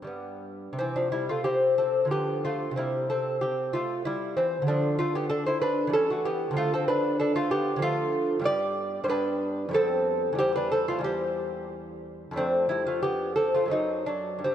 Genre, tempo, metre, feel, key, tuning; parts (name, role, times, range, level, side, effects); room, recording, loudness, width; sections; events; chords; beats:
classical, baroque-style dance for lute; 78-97 BPM; 3/4; rubato; C major; A4 = 440 Hz
lute; solo; 0.0-14.5 s; E2 to D5; -25 LUFS; equal
wet lush hall reverb, RT60 2.7 s; dreamy mix soaked in reverb; -24 LUFS; side -10 dB against mid
0.8-14.5 A section
0.1 G; 0.8 C; 2.1 Bdim/D; 2.8 C; 4.7 Dm; 5.9 C#dim/E; 6.6 Dm; 8.5 G; 9.8 G7/F; 10.4 C/E; 12.4 Dm7/F; 13.7 F#dim7(no3)
0.09 | 0.79 1.46 2.12 | 2.77 3.42 4.05 | 4.67 5.30 5.94 | 6.57 7.20 7.84 | 8.47 9.11 9.75 | 10.39 11.05 11.71 | 12.37 13.03 13.71 | 14.45